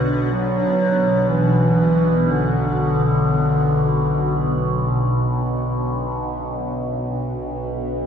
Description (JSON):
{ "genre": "dark ambient drone", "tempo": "free time", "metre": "none", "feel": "none", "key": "unclear", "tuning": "A4 = 440 Hz", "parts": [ { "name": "granular cloud pad", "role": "sustained chords", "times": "0.0-8.1 s", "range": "B2 to B4", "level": "-27 LUFS", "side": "equal", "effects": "built-in reverb, shimmer reverb" }, { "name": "overtone-sweeping drone", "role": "drone", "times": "0.0-8.1 s", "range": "B1 to B2", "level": "-22 LUFS", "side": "equal", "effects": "chorus, built-in reverb, phaser" }, { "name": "mellow bass clarinet", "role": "melody", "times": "0.3-5.3 s", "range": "D3 to F#3", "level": "-19 LUFS", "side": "equal", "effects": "ping-pong delay" } ], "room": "wet cathedral reverb, RT60 5.6 s", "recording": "in a vast, echoing space", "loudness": "-17 LUFS", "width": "side -8 dB against mid", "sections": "0.0-6.3 A section; 6.3-8.1 B section", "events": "fade-out on ambient pad 0.0-6.3", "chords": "0.0 Bm" }